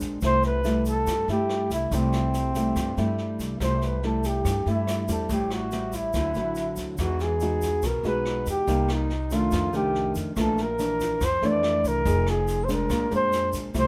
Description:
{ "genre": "bossa nova", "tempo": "142 BPM", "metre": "4/4", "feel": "straight", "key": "C major", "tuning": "A4 = 440 Hz", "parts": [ { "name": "nylon-string guitar", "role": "accompaniment", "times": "0.0-13.9 s", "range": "F2 to Ab4", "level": "-30 LUFS", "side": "equal", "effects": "none" }, { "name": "upright bass", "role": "bass", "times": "0.0-13.9 s", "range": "F1 to G2", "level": "-32 LUFS", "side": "equal", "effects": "none" }, { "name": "jazz brush drum kit", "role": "drums", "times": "0.0-13.8 s", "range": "kick drum, rim click, snare drum", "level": "-37 LUFS", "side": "equal", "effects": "none" }, { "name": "egg shaker", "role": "percussion", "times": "0.0-13.9 s", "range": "none", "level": "-46 LUFS", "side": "equal", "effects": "none" }, { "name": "breathy flugelhorn", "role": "melody", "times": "0.3-13.9 s", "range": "C4 to D5", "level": "-29 LUFS", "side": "equal", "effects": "none" } ], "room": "little or no reverb", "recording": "none", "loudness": "-25 LUFS", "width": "mono", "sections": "0.0-3.6 A section; 3.6-13.9 A section", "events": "none", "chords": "0.2 C6; 5.3 Am7; 6.1 D9; 7.0 Emaj9; 8.7 Cm7; 9.5 F13; 10.4 Bbmaj7#11; 12.1 Fm7; 12.9 Bb9" }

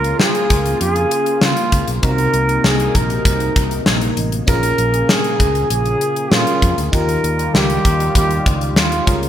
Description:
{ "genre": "1980s-style pop", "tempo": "98 BPM", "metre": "4/4", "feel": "straight", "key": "unclear", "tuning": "A4 = 440 Hz", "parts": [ { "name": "mellow flugelhorn", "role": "melody", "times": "0.0-9.2 s", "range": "F4 to Bb4", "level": "-19 LUFS", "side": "right 1 dB", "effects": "digital delay" }, { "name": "FM electric piano", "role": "accompaniment", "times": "0.0-9.3 s", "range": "Bb2 to Bb4", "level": "-25 LUFS", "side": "left 1 dB", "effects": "chorus, phaser" }, { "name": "lush unison pad", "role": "sustained chords", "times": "0.0-9.3 s", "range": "C3 to Ab4", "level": "-24 LUFS", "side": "equal", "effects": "chorus, phaser" }, { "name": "vintage muted fingered electric bass", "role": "bass", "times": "0.0-9.3 s", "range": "A1 to Db3", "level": "-21 LUFS", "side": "equal", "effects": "none" }, { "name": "gated 80s drum kit", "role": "drums", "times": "0.0-9.3 s", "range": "hi-hat, kick drum, snare drum", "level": "-17 LUFS", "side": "left 1 dB", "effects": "gated reverb" } ], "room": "moderate plate reverb, RT60 3.1 s", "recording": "bright 1980s-style digital production", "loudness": "-14 LUFS", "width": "side -10 dB against mid", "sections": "0.0-9.3 A section", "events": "none", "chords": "0.0 Db6; 2.0 Cm7b5; 4.5 Bbm7; 6.9 Ebadd9" }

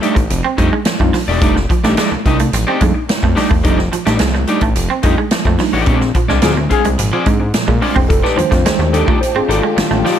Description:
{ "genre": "funk", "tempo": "108 BPM", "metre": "4/4", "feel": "straight", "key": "F mixolydian", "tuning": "A4 = 441 Hz", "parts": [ { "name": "electric guitar at the edge of break-up", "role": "accompaniment", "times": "0.0-10.2 s", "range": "A3 to F5", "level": "-20 LUFS", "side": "left 6 dB", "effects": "wide subtle chorus" }, { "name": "mellow tine electric piano", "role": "stabs", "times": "0.0-10.0 s", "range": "Bb2 to C5", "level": "-20 LUFS", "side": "right 3 dB", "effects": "medium stereo tremolo" }, { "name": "swinging big-band drum kit", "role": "drums", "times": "0.0-10.2 s", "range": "hi-hat, kick drum, snare drum", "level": "-16 LUFS", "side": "equal", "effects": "none" }, { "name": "electric guitar at the edge of break-up", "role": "riff", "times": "0.2-10.2 s", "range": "F3 to C4", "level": "-21 LUFS", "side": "right 7 dB", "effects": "none" }, { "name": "fat analog bass", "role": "bass", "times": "0.2-10.0 s", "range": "E1 to Bb2", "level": "-17 LUFS", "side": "equal", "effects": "none" }, { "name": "breathy trombone", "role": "second line", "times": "6.4-10.2 s", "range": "F4 to Ab4", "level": "-21 LUFS", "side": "left 10 dB", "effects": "tape echo" }, { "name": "warm studio string section", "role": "sustained chords", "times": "8.1-10.2 s", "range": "Eb3 to G4", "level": "-25 LUFS", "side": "left 1 dB", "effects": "none" } ], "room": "little or no reverb", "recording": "none", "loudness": "-12 LUFS", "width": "side -9 dB against mid", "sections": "0.0-8.1 A section; 8.1-10.2 B section", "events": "band accent 5.9-8.1; tine electric piano solo 8.1-10.2", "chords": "0.0 F13; 5.9 Bb9; 8.1 F13" }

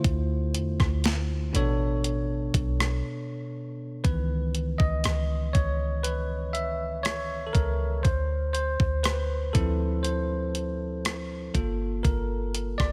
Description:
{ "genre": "contemporary R&B", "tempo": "60 BPM", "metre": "4/4", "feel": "straight", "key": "unclear", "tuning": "A4 = 443 Hz", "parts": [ { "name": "bell-like tine electric piano", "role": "accompaniment", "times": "0.0-12.9 s", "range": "B2 to E5", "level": "-32 LUFS", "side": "equal", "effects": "none" }, { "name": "clean 808-style bass", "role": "bass", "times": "0.0-12.9 s", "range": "G1 to E2", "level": "-31 LUFS", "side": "equal", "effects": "none" }, { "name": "crisp 8-bit digital drum machine", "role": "drums", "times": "0.0-12.9 s", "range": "hi-hat, kick drum, rim click, snare drum", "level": "-30 LUFS", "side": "equal", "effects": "none" } ], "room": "digital ambience", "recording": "none", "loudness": "-28 LUFS", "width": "mono", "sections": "0.0-4.0 A section; 4.0-12.9 B section", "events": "break 3.0-4.0; tine electric piano solo 4.0-12.9", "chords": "0.0 Dm9; 1.5 Bm9; 4.0 C#m7; 8.0 Dm7; 11.5 Gm7" }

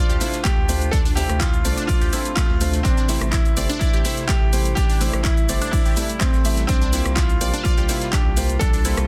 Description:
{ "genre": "progressive house", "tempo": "125 BPM", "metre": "4/4", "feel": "straight", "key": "D minor", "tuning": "A4 = 440 Hz", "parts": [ { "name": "clear grand piano", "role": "melody", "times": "0.0-9.1 s", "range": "C4 to A4", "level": "-29 LUFS", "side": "equal", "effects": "delay" }, { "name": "evolving wavetable pad", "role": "sustained chords", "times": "0.2-9.1 s", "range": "C3 to A4", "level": "-35 LUFS", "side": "equal", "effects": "none" }, { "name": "unison pluck", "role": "arpeggios", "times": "0.0-8.9 s", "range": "A3 to D5", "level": "-32 LUFS", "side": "equal", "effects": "phaser, sidechain pumping, tape echo" }, { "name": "felt-muted upright piano", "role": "stabs", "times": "0.0-9.0 s", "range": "A3 to E5", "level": "-32 LUFS", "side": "equal", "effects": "sidechain pumping, tape echo" }, { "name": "round analog bass", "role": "bass", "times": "0.1-9.1 s", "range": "G1 to D2", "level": "-26 LUFS", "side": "equal", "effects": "sidechain pumping" }, { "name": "house drum kit", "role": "drums", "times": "0.1-9.1 s", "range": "handclaps, hi-hat, rim click, shaker", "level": "-30 LUFS", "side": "equal", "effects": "none" }, { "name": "warm soul drum kit", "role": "drums", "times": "0.2-9.0 s", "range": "hi-hat, snare drum", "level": "-42 LUFS", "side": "equal", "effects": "none" }, { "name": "electronic kick drum", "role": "drums", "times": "0.4-8.7 s", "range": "none", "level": "-23 LUFS", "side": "equal", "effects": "none" } ], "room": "light reverb, small room reverb", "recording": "dense, heavily limited modern master", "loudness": "-20 LUFS", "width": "mono", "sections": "0.0-9.1 A section", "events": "none", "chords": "0.0 Dm7; 2.8 Am7; 6.7 C7sus4" }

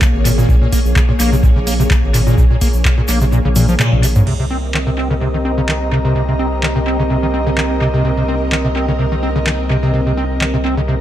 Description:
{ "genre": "acid house", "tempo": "127 BPM", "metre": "4/4", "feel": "swing 54% on 16ths", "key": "C phrygian", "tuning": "A4 = 441 Hz", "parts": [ { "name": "string machine, full ensemble", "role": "sustained chords", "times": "0.0-11.0 s", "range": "Bb3 to Eb5", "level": "-22 LUFS", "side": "equal", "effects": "ensemble chorus, sidechain pumping" }, { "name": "acid bass, square", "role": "riff", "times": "0.0-11.0 s", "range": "Ab2 to C4", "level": "-18 LUFS", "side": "equal", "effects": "overdrive, wide subtle chorus, sidechain pumping, dub echo" }, { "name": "booming analog drum machine", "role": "drums", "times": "0.0-10.5 s", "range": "crash cymbal, handclaps, hi-hat, toms", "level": "-20 LUFS", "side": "equal", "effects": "small room reverb, tape echo" }, { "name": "electronic kick drum", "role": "drums", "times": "0.0-3.0 s", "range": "none", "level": "-13 LUFS", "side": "equal", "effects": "small room reverb" }, { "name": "egg shaker", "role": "percussion", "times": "0.0-4.2 s", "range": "none", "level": "-29 LUFS", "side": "right 3 dB", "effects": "none" }, { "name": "saturated sub bass", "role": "bass", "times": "0.1-11.0 s", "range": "Ab1 to C2", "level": "-19 LUFS", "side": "equal", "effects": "sidechain pumping" }, { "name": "airy breathy pad", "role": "texture", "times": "4.7-11.0 s", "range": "C4 to Bb5", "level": "-22 LUFS", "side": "right 1 dB", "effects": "chorus, sidechain pumping" } ], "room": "light reverb", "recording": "echo-heavy mix", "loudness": "-12 LUFS", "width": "side -12 dB against mid", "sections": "0.0-4.3 A section; 4.3-11.0 B section", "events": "kick drops out 3.3-4.3; drum fill 3.6-4.3; band accent 3.8", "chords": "0.0 Bbm7; 4.3 Cm7" }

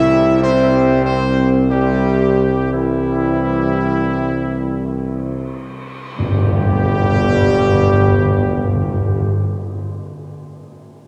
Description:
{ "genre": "classical, ceremonial fanfare", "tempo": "47-66 BPM", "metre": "3/4", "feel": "straight", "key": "G major", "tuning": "A4 = 440 Hz", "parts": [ { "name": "mellow trumpet section", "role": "melody", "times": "0.0-9.3 s", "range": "E4 to E5", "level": "-25 LUFS", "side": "equal", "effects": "none" }, { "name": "bright trombone section", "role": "sustained chords", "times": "0.0-9.3 s", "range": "B2 to G3", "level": "-27 LUFS", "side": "equal", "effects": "none" }, { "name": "dark French horn section", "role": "sustained chords", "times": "0.0-9.3 s", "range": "E3 to E4", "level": "-22 LUFS", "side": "equal", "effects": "none" }, { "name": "mellow tuba", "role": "bass", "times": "0.0-9.3 s", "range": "G1 to C2", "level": "-21 LUFS", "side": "equal", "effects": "none" }, { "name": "cymbal swell and tam-tam", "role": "percussion", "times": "2.7-9.3 s", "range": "none", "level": "-30 LUFS", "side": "equal", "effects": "none" }, { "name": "timpani", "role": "percussion", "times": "6.2-9.3 s", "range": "G2", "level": "-20 LUFS", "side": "equal", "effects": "none" } ], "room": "wet church reverb, RT60 2.8 s", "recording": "dark, warm production", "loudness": "-16 LUFS", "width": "mono", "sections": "0.0-6.2 A section; 6.2-9.8 B section", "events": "slowing down 0.0-6.2; band accent 6.2-7.4", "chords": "0.0 C; 6.2 G" }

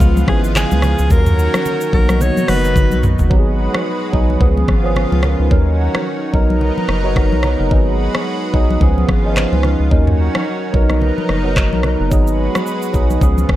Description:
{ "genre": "afrobeats", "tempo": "109 BPM", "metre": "4/4", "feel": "swing 58% on 16ths", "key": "G# dorian", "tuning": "A4 = 440 Hz", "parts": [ { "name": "breathy alto saxophone", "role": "melody", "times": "0.0-3.0 s", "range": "E#4 to C#5", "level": "-21 LUFS", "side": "left 1 dB", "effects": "analog delay" }, { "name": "tine electric piano", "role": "accompaniment", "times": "0.0-13.6 s", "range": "C#3 to A#5", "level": "-20 LUFS", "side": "right 2 dB", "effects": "analog chorus" }, { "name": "lush unison pad", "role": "sustained chords", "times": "0.0-13.6 s", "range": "B2 to B4", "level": "-24 LUFS", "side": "equal", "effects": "chorus" }, { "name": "round analog bass", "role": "bass", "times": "0.0-13.6 s", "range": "F#1 to D#2", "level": "-16 LUFS", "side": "equal", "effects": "none" }, { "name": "afro-pop drum kit", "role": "drums", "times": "0.0-13.6 s", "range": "handclaps, hi-hat, kick drum, rim click, shaker, toms", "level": "-17 LUFS", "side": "equal", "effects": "none" }, { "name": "congas", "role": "percussion", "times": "0.0-13.6 s", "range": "none", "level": "-24 LUFS", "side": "left 2 dB", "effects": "none" } ], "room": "light reverb, digital ambience", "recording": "none", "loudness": "-13 LUFS", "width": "side -14 dB against mid", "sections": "0.0-3.3 A section; 3.3-13.6 B section", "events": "drum fill 2.8-3.3; hi-hats muted 3.3-12.1", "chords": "0.0 C#7; 1.1 D#m7; 1.9 Bmaj7; 3.3 G#m7; 4.4 C#7; 5.5 D#m7; 6.3 Bmaj7; 7.7 G#m7; 8.8 C#7; 9.9 D#m7; 10.7 Bmaj7; 12.1 G#m7" }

